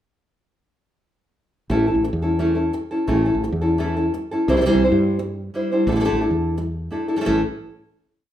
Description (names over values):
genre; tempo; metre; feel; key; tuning
flamenco; 173 BPM; 4/4; straight; unclear; A4 = 440 Hz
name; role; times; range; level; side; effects
nylon-string guitar; accompaniment; 1.7-7.4 s; A2 to C5; -19 LUFS; equal; none
woody fretless electric bass; bass; 1.7-7.4 s; A1 to G2; -23 LUFS; equal; none
room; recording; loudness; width
moderate large studio reverb, RT60 0.8 s; minimal, uncompressed stereo recording; -18 LUFS; side -11 dB against mid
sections
1.7-7.3 groove; 7.3-8.3 final chord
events
none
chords
1.7 A; 4.5 Cadd9; 5.9 Asus4; 7.3 A